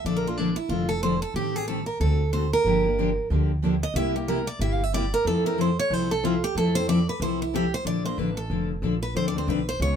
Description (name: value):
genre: acoustic string swing (jazz manouche)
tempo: 185 BPM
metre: 4/4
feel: swing 59% on 8ths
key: F major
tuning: A4 = 440 Hz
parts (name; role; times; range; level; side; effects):
- picked steel-string acoustic guitar; melody; 0.0-10.0 s; D4 to F5; -26 LUFS; right 3 dB; none
- upright bass; bass; 0.0-10.0 s; F1 to F2; -28 LUFS; equal; none
- picked steel-string acoustic guitar; accompaniment; 0.1-10.0 s; C3 to A4; -27 LUFS; left 4 dB; none
- picked steel-string acoustic guitar; accompaniment; 2.7-7.6 s; C3 to A4; -31 LUFS; right 6 dB; none
room: light reverb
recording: minimal, uncompressed stereo recording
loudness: -22 LUFS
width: side -8 dB against mid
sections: 0.0-7.9 A section; 7.9-10.0 A section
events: steel-string acoustic guitar solo 0.0-10.0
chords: 0.1 Bbmaj7; 1.4 Am7b5; 2.0 D7; 2.7 Gm7; 4.0 C7; 5.3 Fmaj7; 7.9 Bbmaj7; 9.2 Dm7